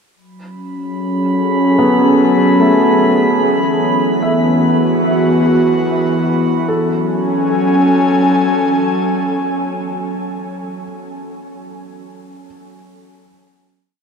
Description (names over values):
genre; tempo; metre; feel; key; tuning
ambient; free time; none; none; F# minor; A4 = 440 Hz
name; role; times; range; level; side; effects
airy breathy pad; sustained chords; 0.7-10.7 s; E3 to G#5; -14 LUFS; equal; chorus
drifting glass-harmonics texture; texture; 0.9-6.7 s; B5; -22 LUFS; right 2 dB; chorus, built-in reverb
felt-muted upright piano; arpeggios; 1.8-12.5 s; F#3 to E5; -19 LUFS; equal; analog delay
room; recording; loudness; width
wet huge ambient reverb, RT60 8.9 s; dreamy mix soaked in reverb; -12 LUFS; side -6 dB against mid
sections
0.2-6.7 A section; 6.7-10.0 final chord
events
filter sweep on analog synth pad 0.2-6.7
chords
0.2 F#m; 3.4 E; 6.7 F#m